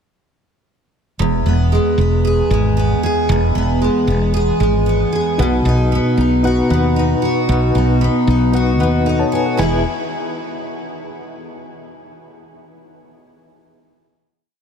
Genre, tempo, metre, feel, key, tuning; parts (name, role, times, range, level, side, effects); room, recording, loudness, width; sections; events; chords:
acoustic pop; 114 BPM; 4/4; straight; E major; A4 = 440 Hz
picked steel-string acoustic guitar; accompaniment; 1.2-9.8 s; E2 to G#4; -17 LUFS; equal; double-tracked left and right
woody fretless electric bass; bass; 1.2-9.8 s; E1 to D#2; -17 LUFS; equal
reed electric piano; accompaniment; 5.4-9.8 s; D#4 to A5; -22 LUFS; left 4 dB; fast tremolo
moderate huge ambient reverb, RT60 6.8 s; dreamy mix soaked in reverb; -14 LUFS; side -7 dB against mid
1.2-9.6 verse; 9.6-11.7 final chord
1.2 E; 5.4 B; 9.6 E